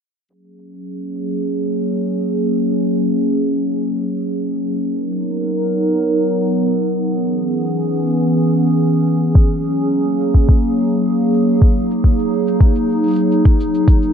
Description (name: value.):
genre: folktronica.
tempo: 106 BPM.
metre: 4/4.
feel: straight.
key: F# mixolydian.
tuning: A4 = 439 Hz.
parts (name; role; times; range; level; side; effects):
warbly tape-like pad; sustained chords; 0.8-14.1 s; E3 to A#4; -16 LUFS; equal; chorus, built-in reverb.
cabasa; drums; 0.3-14.1 s; none; -55 LUFS; left 3 dB; overdrive.
electronic kick drum; drums; 9.4-14.0 s; none; -12 LUFS; equal; overdrive.
room: wet studio reverb, RT60 0.6 s.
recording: dark, warm production, low-pass filter.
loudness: -14 LUFS.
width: side -7 dB against mid.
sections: 0.3-14.1 A section.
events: filter sweep on ambient pad 0.3-14.1; filter sweep 0.3-14.1.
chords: 0.3 F#add9; 4.8 Bmaj7; 7.1 E6; 9.4 F#add9.